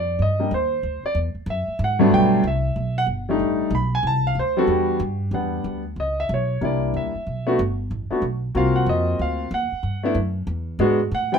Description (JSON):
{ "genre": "jazz piano trio", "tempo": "187 BPM", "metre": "4/4", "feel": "swing 64% on 8ths", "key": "G major", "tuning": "A4 = 441 Hz", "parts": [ { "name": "warm grand piano", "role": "melody", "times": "0.0-11.4 s", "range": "G2 to B5", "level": "-21 LUFS", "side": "equal", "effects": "none" }, { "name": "upright bass", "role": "bass", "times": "0.0-11.4 s", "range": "G1 to A2", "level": "-25 LUFS", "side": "equal", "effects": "none" } ], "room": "moderate club reverb, RT60 0.6 s", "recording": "minimal, uncompressed stereo recording", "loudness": "-20 LUFS", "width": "side -6 dB against mid", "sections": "0.0-2.1 A section; 2.1-11.4 A section", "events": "grand piano solo 0.0-11.4", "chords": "0.0 Ebmaj9; 0.8 D; 2.1 Gmaj7; 3.4 Am11; 4.7 Em9; 6.0 Badd9; 6.6 C9; 7.3 B7(no3); 8.6 Ebm69/C; 9.8 N.C.; 10.5 E7", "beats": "0.20 0.52 | 0.84 1.16 1.48 1.80 | 2.12 2.44 2.76 3.08 | 3.41 3.73 4.05 4.37 | 4.69 5.01 5.33 5.66 | 5.98 6.30 6.62 6.94 | 7.26 7.59 7.91 8.23 | 8.55 8.87 9.19 9.52 | 9.84 10.16 10.48 10.80 | 11.12" }